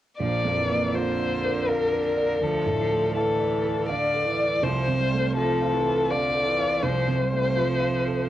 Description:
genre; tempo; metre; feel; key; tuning
neoclassical piano and strings; 82 BPM; 3/4; rubato; unclear; A4 = 440 Hz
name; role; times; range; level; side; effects
warm violin; melody; 0.2-8.3 s; A4 to D5; -24 LUFS; left 4 dB; cassette tape
rich cello; second line; 0.2-8.3 s; D3 to G3; -31 LUFS; right 4 dB; cassette tape
felt-muted upright piano; accompaniment; 0.2-8.3 s; Bb1 to F5; -26 LUFS; right 4 dB; cassette tape
hand-pumped harmonium; sustained chords; 0.2-8.3 s; A3 to F5; -37 LUFS; left 1 dB; cassette tape
room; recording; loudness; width
light reverb, studio reverb; home recording on cassette; -22 LUFS; side -13 dB against mid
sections
0.2-8.3 A section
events
none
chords
0.2 Bb; 2.4 Dm; 4.6 F/C

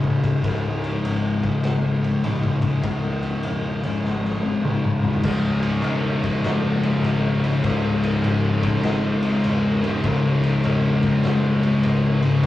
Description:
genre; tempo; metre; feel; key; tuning
stoner and doom metal; 100 BPM; 4/4; swing 66% on 8ths; C# minor; A4 = 441 Hz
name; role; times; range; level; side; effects
thick fuzz guitar; riff; 0.0-12.5 s; C#2 to C#3; -26 LUFS; left 5 dB; distortion
thick fuzz guitar; riff; 0.0-12.5 s; C#2 to C#3; -21 LUFS; equal; distortion
growling picked electric bass; bass; 0.0-12.5 s; C#1 to A1; -29 LUFS; left 2 dB; overdrive, tube saturation
raw garage drum kit; drums; 0.0-12.5 s; crash cymbal, kick drum, ride cymbal, snare drum, toms; -27 LUFS; left 1 dB; none
scooped high-gain guitar; riff; 5.2-12.5 s; C#2 to C#3; -29 LUFS; left 1 dB; distortion
room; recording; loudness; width
moderate booth ambience, RT60 0.2 s; rough rehearsal-room recording, tube saturation, cassette tape, small room reverb; -19 LUFS; side -14 dB against mid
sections
0.0-5.2 A section; 5.2-12.5 B section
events
drum fill 4.0-5.2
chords
0.0 C#5; 5.2 C#m

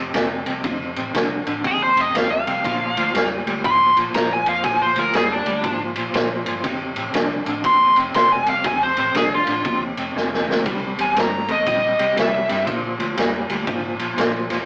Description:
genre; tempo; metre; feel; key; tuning
electric blues shuffle; 120 BPM; 4/4; swing 64% on 8ths; unclear; A4 = 440 Hz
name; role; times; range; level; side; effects
direct-recorded clean electric guitar; riff; 0.0-14.7 s; F2 to A3; -28 LUFS; equal; tremolo
vintage muted fingered electric bass; bass; 0.0-14.7 s; E1 to G2; -36 LUFS; equal; none
vintage drum kit; drums; 0.1-14.6 s; kick drum, ride cymbal, snare drum; -25 LUFS; equal; none
smooth overdriven lead guitar; melody; 1.7-12.7 s; D4 to C6; -20 LUFS; equal; none
room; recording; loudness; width
moderate studio reverb, RT60 0.5 s; rough rehearsal-room recording, AM radio sound; -20 LUFS; mono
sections
0.0-14.7 A section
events
lead electric guitar solo 0.0-14.7; drum fill 10.2-10.7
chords
0.0 F; 2.6 Bb7; 6.6 F7; 10.7 C7; 12.7 Bb7

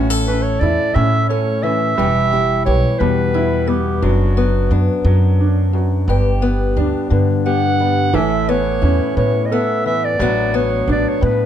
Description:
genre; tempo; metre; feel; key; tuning
acoustic folk duo or small band; 58 BPM (dotted quarters); 6/8; straight; A mixolydian; A4 = 440 Hz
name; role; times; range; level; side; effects
fingerpicked acoustic archtop guitar; accompaniment; 0.0-11.5 s; F#2 to A4; -20 LUFS; left 6 dB; none
clear upright piano; arpeggios; 0.0-11.5 s; E3 to A4; -22 LUFS; right 3 dB; none
upright bass; bass; 0.0-11.5 s; E1 to A2; -18 LUFS; equal; none
mellow clarinet; second line; 0.3-11.5 s; F#4 to F#5; -20 LUFS; right 4 dB; none
room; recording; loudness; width
light reverb; dark, warm production; -14 LUFS; side -10 dB against mid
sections
0.0-11.5 A section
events
clarinet solo 0.0-11.5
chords
0.0 A; 2.0 Em; 4.0 Bm/F#; 6.1 G; 8.1 Aadd9; 10.2 D6/A

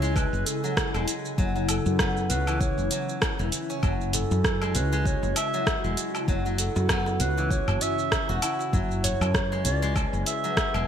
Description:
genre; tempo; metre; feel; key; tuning
organic downtempo; 98 BPM; 4/4; swing 56% on 16ths; F# minor; A4 = 439 Hz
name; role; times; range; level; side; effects
dark clarinet; melody; 0.0-10.9 s; A4 to E5; -31 LUFS; right 2 dB; digital delay
ethereal airy pad; sustained chords; 0.0-10.9 s; C#3 to G#5; -33 LUFS; left 2 dB; ensemble chorus, built-in reverb, sidechain pumping
steel-string zither; arpeggios; 0.0-10.9 s; C#3 to F#4; -32 LUFS; left 1 dB; digital delay
woody fretless electric bass; bass; 0.0-10.8 s; E1 to F#2; -27 LUFS; equal; sidechain pumping
deep house drum kit; drums; 0.0-10.9 s; hi-hat, rim click, shaker, woodblock; -29 LUFS; right 1 dB; gated reverb
electronic kick drum; drums; 0.2-10.7 s; none; -28 LUFS; equal; none
darbuka; percussion; 3.8-10.4 s; none; -35 LUFS; left 2 dB; none
room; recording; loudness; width
light reverb; bright 1980s-style digital production; -23 LUFS; side -8 dB against mid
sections
0.0-10.9 A section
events
none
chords
0.0 F#m7

